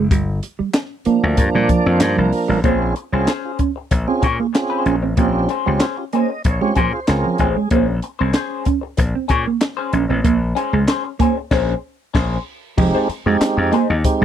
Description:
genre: funk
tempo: 95 BPM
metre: 4/4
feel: straight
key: unclear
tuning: A4 = 441 Hz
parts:
  - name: mellow electric guitar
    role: riff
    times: 0.0-14.2 s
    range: F3 to Db4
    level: -20 LUFS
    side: right 7 dB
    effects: none
  - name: slap bass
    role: bass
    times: 0.0-14.2 s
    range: F1 to Bb2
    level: -19 LUFS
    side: left 1 dB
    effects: none
  - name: compact cocktail drum kit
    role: drums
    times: 0.1-14.2 s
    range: crash cymbal, handclaps, hi-hat, kick drum, snare drum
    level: -19 LUFS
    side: left 1 dB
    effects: none
  - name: tonewheel organ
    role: stabs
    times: 1.1-7.7, 12.8-14.2 s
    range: F3 to Eb5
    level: -20 LUFS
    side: right 3 dB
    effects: chorus vibrato, stopped rotary speaker
  - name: electric guitar at the edge of break-up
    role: accompaniment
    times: 2.6-14.1 s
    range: Db4 to Db5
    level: -23 LUFS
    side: left 8 dB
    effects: wah
room: little or no reverb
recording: dry, close 1970s-style studio recording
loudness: -16 LUFS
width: side -10 dB against mid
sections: 0.0-2.6 A section; 2.6-12.8 B section; 12.8-14.2 C section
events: break 0.0-2.6; tonewheel organ solo 0.0-2.6; tonewheel organ fill 5.8-7.7; band accent 11.5-12.8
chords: 0.1 Gm7; 2.6 Bbm9; 12.8 Fm7

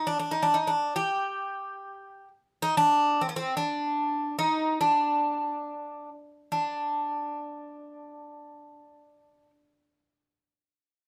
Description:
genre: Turkish makam ensemble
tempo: free time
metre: none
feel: none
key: unclear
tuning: A4 = 440 Hz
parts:
  - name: Greek bouzouki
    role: solo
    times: 0.0-9.5 s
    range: B3-40c to G4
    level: -28 LUFS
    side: equal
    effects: none
room: moderate studio reverb, RT60 0.6 s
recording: none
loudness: -27 LUFS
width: mono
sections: 0.0-6.5 A section; 6.5-9.3 B section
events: slowing down 2.2-6.5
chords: none

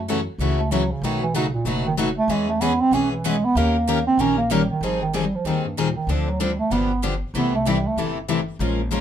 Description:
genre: acoustic string swing (jazz manouche)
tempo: 190 BPM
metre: 4/4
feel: swing 58% on 8ths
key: unclear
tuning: A4 = 440 Hz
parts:
  - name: mellow bass clarinet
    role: melody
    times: 0.0-8.0 s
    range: G2 to C#4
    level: -22 LUFS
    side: right 3 dB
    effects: none
  - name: upright bass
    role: bass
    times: 0.0-9.0 s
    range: F#1 to F#2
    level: -27 LUFS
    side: equal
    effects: none
  - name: picked steel-string acoustic guitar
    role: accompaniment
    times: 0.1-9.0 s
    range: B2 to A#4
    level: -25 LUFS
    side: left 7 dB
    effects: none
  - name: picked steel-string acoustic guitar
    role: accompaniment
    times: 0.1-9.0 s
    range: B2 to B4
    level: -29 LUFS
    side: right 6 dB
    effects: none
room: moderate club reverb, RT60 0.6 s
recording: minimal, uncompressed stereo recording, faint mains hum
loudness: -19 LUFS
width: side -9 dB against mid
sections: 0.0-4.8 A section; 4.8-9.0 A section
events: bass clarinet solo 0.0-9.0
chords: 0.0 F#m7; 1.0 B7; 2.3 E6; 3.6 D#7; 4.8 Abmaj7; 6.1 Dm7; 6.7 G7; 7.3 C6

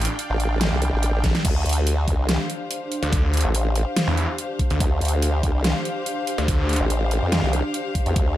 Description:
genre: heavy wobble dubstep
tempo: 143 BPM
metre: 4/4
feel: half-time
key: D minor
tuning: A4 = 442 Hz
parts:
  - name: supersaw pad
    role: sustained chords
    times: 0.0-8.4 s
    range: D4 to A5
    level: -32 LUFS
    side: right 1 dB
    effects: sidechain pumping, low-pass filter
  - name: snarling distorted saw bass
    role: bass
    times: 0.0-0.1, 3.0-6.8 s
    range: D2 to E2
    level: -22 LUFS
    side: equal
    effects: distortion, overdrive
  - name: dubstep drum kit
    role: drums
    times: 0.0-8.2 s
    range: crash cymbal, hi-hat, snare drum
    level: -26 LUFS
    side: equal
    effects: overdrive
  - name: formant-sweep wobble bass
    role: bass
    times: 0.3-8.4 s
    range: A1 to F2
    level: -21 LUFS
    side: equal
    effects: chorus, overdrive
  - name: electronic kick drum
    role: drums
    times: 1.2-8.2 s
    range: none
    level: -22 LUFS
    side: equal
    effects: overdrive
  - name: warm studio string section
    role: texture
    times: 1.4-8.4 s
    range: G4 to F5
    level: -30 LUFS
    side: left 3 dB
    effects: sidechain pumping
room: little or no reverb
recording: none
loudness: -20 LUFS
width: side -13 dB against mid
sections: 0.0-1.4 A section; 1.4-8.4 A section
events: drop 0.0-1.4, 1.4-8.4; drum fill 1.2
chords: 0.0 Dm

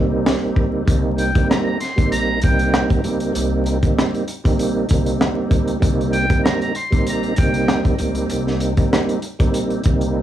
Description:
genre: hip hop, boom-bap hip-hop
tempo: 97 BPM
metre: 4/4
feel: swing 56% on 16ths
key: C minor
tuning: A4 = 440 Hz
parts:
  - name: tonewheel organ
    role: accompaniment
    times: 0.0-10.2 s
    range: G3 to Eb4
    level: -20 LUFS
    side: right 2 dB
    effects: chorus vibrato, slow rotary speaker, high-pass filter, low-pass filter
  - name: upright bass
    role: bass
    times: 0.0-10.1 s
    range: Bb1 to Db2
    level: -24 LUFS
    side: left 1 dB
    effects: tube saturation
  - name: crunchy breakbeat drum kit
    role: drums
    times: 0.3-10.1 s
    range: hi-hat, kick drum, rim click, snare drum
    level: -19 LUFS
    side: equal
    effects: none
  - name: trumpet with metal mute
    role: melody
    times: 1.2-7.8 s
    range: G5 to C6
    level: -24 LUFS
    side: equal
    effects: high-pass filter, low-pass filter, tape echo
room: little or no reverb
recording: dry, gritty hardware recording, vinyl crackle, studio ambience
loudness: -16 LUFS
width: side -11 dB against mid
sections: 0.0-10.2 A section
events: break 0.0-0.9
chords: 0.0 Cm7

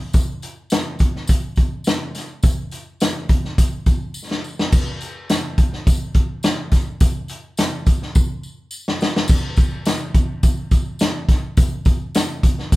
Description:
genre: soul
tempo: 105 BPM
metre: 4/4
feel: straight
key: none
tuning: none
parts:
  - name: vintage drum kit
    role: drums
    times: 0.1-12.8 s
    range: crash cymbal, hi-hat, kick drum, snare drum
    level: -17 LUFS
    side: equal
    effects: none
  - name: tambourine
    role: percussion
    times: 0.1-12.8 s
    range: none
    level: -35 LUFS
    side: left 1 dB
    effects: none
room: moderate studio reverb, RT60 0.6 s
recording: band playing live in one room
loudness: -17 LUFS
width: side -19 dB against mid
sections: 0.0-4.7 A section; 4.7-9.3 B section; 9.3-12.8 C section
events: drum fill 4.2-4.7, 8.2-9.3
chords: none

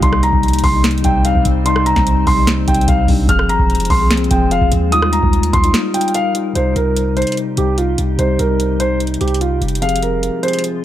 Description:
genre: hip hop, trap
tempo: 147 BPM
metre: 4/4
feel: half-time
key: C minor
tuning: A4 = 440 Hz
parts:
  - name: dark baby grand piano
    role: melody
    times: 0.0-10.6 s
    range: F4 to F6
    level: -18 LUFS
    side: right 1 dB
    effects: low-pass filter
  - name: mellow tine electric piano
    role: accompaniment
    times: 0.0-10.8 s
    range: C3 to Ab4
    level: -19 LUFS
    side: left 3 dB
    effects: medium stereo tremolo, low-pass filter
  - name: glassy FM pad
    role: sustained chords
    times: 0.0-10.8 s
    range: C3 to C5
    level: -25 LUFS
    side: right 1 dB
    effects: ensemble chorus, built-in reverb
  - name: warm 808-style bass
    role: bass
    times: 0.0-10.3 s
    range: F1 to Eb2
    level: -18 LUFS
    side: equal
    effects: none
  - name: booming analog drum machine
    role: drums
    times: 0.0-10.7 s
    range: hi-hat, kick drum, rim click, snare drum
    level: -17 LUFS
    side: equal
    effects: none
room: light reverb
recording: none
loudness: -12 LUFS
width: side -12 dB against mid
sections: 0.0-6.6 A section; 6.6-10.8 B section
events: break 5.7-6.6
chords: 0.0 Cm; 3.3 Fm; 4.9 Ebadd9; 6.6 Cm; 9.8 Fm

